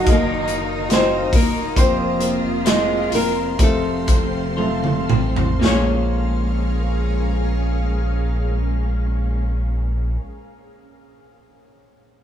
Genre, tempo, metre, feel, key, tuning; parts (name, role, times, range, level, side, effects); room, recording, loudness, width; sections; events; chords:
pop ballad; 55-73 BPM; 4/4; straight; Bb minor; A4 = 440 Hz
nylon-string guitar; melody; 0.0-10.2 s; Ab3 to Db5; -22 LUFS; left 2 dB
dark symphonic cello section; second line; 0.0-10.2 s; Bb2 to F4; -29 LUFS; right 1 dB
warm grand piano; accompaniment; 0.0-12.2 s; Bb1 to F5; -25 LUFS; right 2 dB
ethereal airy pad; sustained chords; 0.0-10.2 s; Db4 to Eb6; -30 LUFS; right 1 dB; ensemble chorus, built-in reverb
twelve-string electric guitar; arpeggios; 0.0-10.3 s; F2 to F4; -28 LUFS; left 5 dB
sub bass with octave; bass; 0.0-10.2 s; Eb1 to Bb1; -23 LUFS; equal
modern studio drum kit; drums; 0.1-5.9 s; hi-hat, kick drum, snare drum, toms; -19 LUFS; equal
light reverb; band playing live in one room, studio reverb; -17 LUFS; side -9 dB against mid
0.0-5.6 A section; 5.6-10.0 B section
slowing down 0.0-5.6; drum fill 4.6-5.6
0.0 Ebmadd9/Gb; 1.8 Fsus4; 3.6 F; 5.6 Bbm7